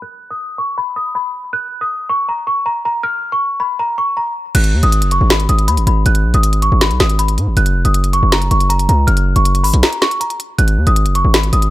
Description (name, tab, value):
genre	hip hop, trap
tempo	159 BPM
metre	4/4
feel	half-time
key	G# dorian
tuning	A4 = 441 Hz
part	worn celesta	melody	0.0-11.7 s	A#5 to F#6	-17 LUFS	equal	low-pass filter
part	distorted 808-style bass	bass	4.5-11.7 s	E#1 to G#2	-13 LUFS	equal	distortion
part	trap drum kit	drums	4.5-11.7 s	crash cymbal, hi-hat, snare drum	-17 LUFS	equal	none
room	little or no reverb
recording	none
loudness	-12 LUFS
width	side -16 dB against mid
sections	0.0-4.5 A section; 4.5-11.7 B section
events	filter sweep on celesta 0.0-4.5; break 9.8-10.6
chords	0.0 N.C.; 4.5 G#m; 7.6 F#; 10.6 G#7(no3)